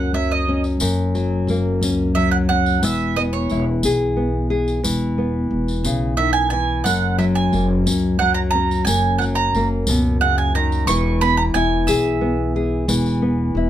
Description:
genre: acoustic folk duo or small band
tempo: 60 BPM (dotted quarters)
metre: 6/8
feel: straight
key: F# mixolydian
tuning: A4 = 437 Hz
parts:
  - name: bowl-back mandolin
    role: second line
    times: 0.0-12.8 s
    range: C#5 to C#6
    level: -21 LUFS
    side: right 6 dB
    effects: none
  - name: nylon-string guitar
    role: accompaniment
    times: 0.0-13.7 s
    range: F#2 to A#4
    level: -20 LUFS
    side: left 2 dB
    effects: none
  - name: upright bass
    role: bass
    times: 0.0-13.7 s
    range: E1 to C#2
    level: -22 LUFS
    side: equal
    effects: none
  - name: tambourine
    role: percussion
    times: 0.6-13.1 s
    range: none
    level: -27 LUFS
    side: left 2 dB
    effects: none
room: moderate small room reverb, RT60 0.6 s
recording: none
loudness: -16 LUFS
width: side -11 dB against mid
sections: 0.0-13.7 A section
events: mandolin solo 0.0-13.7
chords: 0.0 F#; 2.8 E; 6.9 F#; 10.9 E

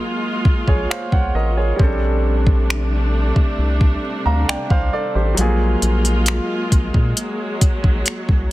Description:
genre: contemporary R&B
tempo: 67 BPM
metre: 4/4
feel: straight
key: unclear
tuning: A4 = 444 Hz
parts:
  - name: clear grand piano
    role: accompaniment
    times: 0.0-8.5 s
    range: Gb3 to Bb5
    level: -24 LUFS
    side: right 1 dB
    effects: none
  - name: warm studio string section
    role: sustained chords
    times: 0.0-8.5 s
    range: C3 to F4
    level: -25 LUFS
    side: equal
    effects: none
  - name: round analog bass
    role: bass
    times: 0.5-8.5 s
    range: A1 to Bb2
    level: -19 LUFS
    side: equal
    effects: none
  - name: smooth R&B drum kit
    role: drums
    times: 0.5-8.5 s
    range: finger snaps, hi-hat, kick drum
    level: -16 LUFS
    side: equal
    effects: soft clipping on snare
room: studio reverb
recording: dense, heavily limited modern master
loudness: -16 LUFS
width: side -17 dB against mid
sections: 0.0-8.5 A section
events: none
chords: 0.0 Gbmaj9/Bb; 1.8 Bbmaj13; 5.4 Gbmaj9/Bb

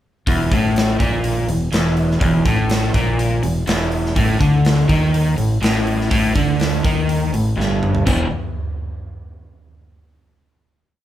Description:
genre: blues rock power trio and southern rock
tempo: 123 BPM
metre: 4/4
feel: straight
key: unclear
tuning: A4 = 437 Hz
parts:
  - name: crunchy overdriven guitar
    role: riff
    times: 0.3-8.3 s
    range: E2 to E3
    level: -18 LUFS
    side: equal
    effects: none
  - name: growling fingered electric bass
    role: bass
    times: 0.3-8.3 s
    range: E1 to D#2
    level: -22 LUFS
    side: equal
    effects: overdrive
  - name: big rock drum kit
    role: drums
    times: 0.3-8.2 s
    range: hi-hat, kick drum, snare drum, splash cymbal, toms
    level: -21 LUFS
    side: equal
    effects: none
room: moderate large studio reverb, RT60 0.8 s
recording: band playing live in one room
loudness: -15 LUFS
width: side -12 dB against mid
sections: 0.3-8.1 riff; 8.1-10.0 final chord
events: drum fill 7.6-8.1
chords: 0.3 Esus4; 4.2 D#maj7#11; 8.1 E5

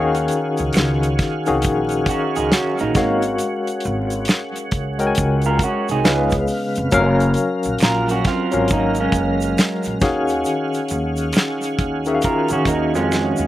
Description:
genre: R&B, neo-soul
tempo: 68 BPM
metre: 4/4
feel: swing 63% on 16ths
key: Eb minor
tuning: A4 = 440 Hz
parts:
  - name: barky tine electric piano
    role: accompaniment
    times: 0.0-13.5 s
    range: Db3 to Ab5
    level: -21 LUFS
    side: left 3 dB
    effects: overdrive, medium tremolo, slapback echo
  - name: tonewheel organ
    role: sustained chords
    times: 0.0-13.5 s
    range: Eb3 to F5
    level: -27 LUFS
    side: right 1 dB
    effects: chorus vibrato, slow rotary speaker
  - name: upright bass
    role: bass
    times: 0.0-13.5 s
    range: F1 to Eb3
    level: -23 LUFS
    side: equal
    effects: none
  - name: damped 70s drum kit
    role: drums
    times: 0.1-13.4 s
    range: hi-hat, kick drum, snare drum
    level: -20 LUFS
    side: equal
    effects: none
  - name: egg shaker and finger snaps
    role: percussion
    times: 0.2-13.5 s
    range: none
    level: -32 LUFS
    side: right 5 dB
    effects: none
  - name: electric guitar through a small old amp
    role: second line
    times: 2.1-13.5 s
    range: Ab3 to Bb4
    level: -22 LUFS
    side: right 5 dB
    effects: none
room: little or no reverb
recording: recorded outdoors, with no room sound, vinyl crackle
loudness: -17 LUFS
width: side -14 dB against mid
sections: 0.0-13.5 A section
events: drum fill 13.1-13.5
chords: 0.0 Ebm11; 3.0 Ab13sus4; 6.0 Db7; 6.9 Gbmaj7; 10.0 Ebm11

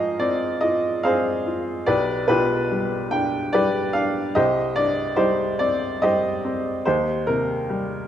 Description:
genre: classical, romantic character piece for solo piano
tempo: 72 BPM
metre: 3/4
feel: rubato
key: C minor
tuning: A4 = 440 Hz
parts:
  - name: bright upright piano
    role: solo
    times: 0.0-8.1 s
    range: B1 to G5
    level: -20 LUFS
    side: equal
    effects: none
room: moderate recital hall reverb, RT60 1.4 s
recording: none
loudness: -20 LUFS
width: side -10 dB against mid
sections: 0.0-8.1 A section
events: none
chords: 0.0 Fm/Ab; 1.9 G7/B; 4.4 Cm; 6.8 Cm/Eb

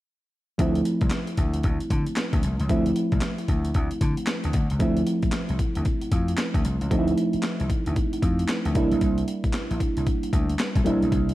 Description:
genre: R&B, new jack swing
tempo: 114 BPM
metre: 4/4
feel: swing 62% on 16ths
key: D minor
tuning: A4 = 440 Hz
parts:
  - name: mellow FM electric piano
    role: accompaniment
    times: 0.6-11.3 s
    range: F3 to E4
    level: -26 LUFS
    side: right 1 dB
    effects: chorus
  - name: vintage slap bass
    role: bass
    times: 0.6-11.3 s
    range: Bb1 to D3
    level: -26 LUFS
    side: equal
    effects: none
  - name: breakbeat sampler-style drum kit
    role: drums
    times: 0.6-11.3 s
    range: handclaps, hi-hat, kick drum, snare drum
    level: -26 LUFS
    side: equal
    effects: overdrive
room: little or no reverb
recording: none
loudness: -22 LUFS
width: side -16 dB against mid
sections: 0.6-4.8 A section; 4.8-11.3 B section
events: none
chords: 0.6 Dm9; 4.5 N.C.; 4.8 Dm9; 8.8 C9

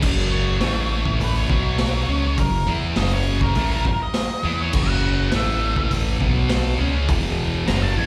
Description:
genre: garage rock duo or trio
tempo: 102 BPM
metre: 4/4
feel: straight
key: unclear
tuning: A4 = 443 Hz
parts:
  - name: thick fuzz guitar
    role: riff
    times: 0.0-8.1 s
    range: E2 to E4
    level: -26 LUFS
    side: equal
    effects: distortion, slapback echo
  - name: growling fingered electric bass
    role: bass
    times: 0.0-8.1 s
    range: E1 to E2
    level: -26 LUFS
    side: equal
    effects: overdrive
  - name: raw garage drum kit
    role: drums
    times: 0.0-7.8 s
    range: crash cymbal, hi-hat, kick drum, snare drum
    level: -26 LUFS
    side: equal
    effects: none
  - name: octave-fuzz lead guitar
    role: melody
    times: 0.3-8.1 s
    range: A#4 to A#5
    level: -30 LUFS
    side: equal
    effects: distortion, slapback echo
room: small room ambience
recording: live gig heard through the venue's PA, recital hall reverb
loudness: -21 LUFS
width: mono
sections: 0.0-8.1 A section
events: none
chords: 0.0 F#5; 0.6 A5; 1.5 B5; 2.1 F#; 5.3 A5; 6.2 B5; 6.8 C#5; 7.1 E5; 7.7 F#

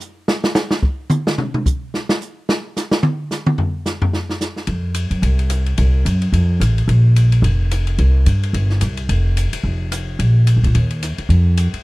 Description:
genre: jazz, small-group swing and bop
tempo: 218 BPM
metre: 4/4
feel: swing 58% on 8ths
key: F major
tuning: A4 = 441 Hz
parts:
  - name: open jazz drum kit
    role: drums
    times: 0.0-11.8 s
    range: hi-hat, kick drum, ride cymbal, rim click, snare drum, toms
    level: -21 LUFS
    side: equal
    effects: none
  - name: upright bass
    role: bass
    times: 4.7-11.8 s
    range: F1 to Bb2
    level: -14 LUFS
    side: equal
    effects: none
room: little or no reverb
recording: dry, close 1970s-style studio recording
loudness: -15 LUFS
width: side -21 dB against mid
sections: 0.0-4.7 A section; 4.7-11.8 B section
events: drum solo 0.0-4.7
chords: none

